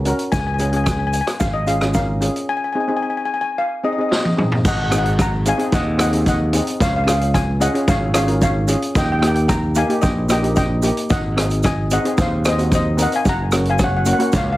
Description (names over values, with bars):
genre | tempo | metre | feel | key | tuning
calypso | 112 BPM | 4/4 | straight | unclear | A4 = 439 Hz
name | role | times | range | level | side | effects
modern bright fingered electric bass | bass | 0.0-14.6 s | Gb1 to Eb2 | -20 LUFS | equal | none
steel pan | accompaniment | 0.1-14.4 s | Bb3 to Bb4 | -23 LUFS | equal | none
street-band drum kit | drums | 0.1-14.5 s | crash cymbal, hi-hat, kick drum, rim click, snare drum, toms | -21 LUFS | equal | none
egg shaker | percussion | 0.1-14.5 s | none | -32 LUFS | right 6 dB | none
steel pan | melody | 0.3-14.6 s | C5 to Bb5 | -22 LUFS | left 2 dB | tape echo
room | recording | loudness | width
light reverb | heavily compressed radio sound | -16 LUFS | side -16 dB against mid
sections
0.0-4.7 A section; 4.7-14.6 B section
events
drum fill 4.1-4.7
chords
0.3 Db; 2.5 Ab; 4.7 Ab7; 6.8 Db; 9.0 Eb; 11.1 Ab; 13.3 Gb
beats
| 0.33 0.87 1.41 1.95 | 2.49 3.03 3.57 4.11 | 4.65 5.19 5.73 6.27 | 6.80 7.34 7.88 8.42 | 8.96 9.49 10.03 10.57 | 11.11 11.64 12.18 12.72 | 13.26 13.79 14.33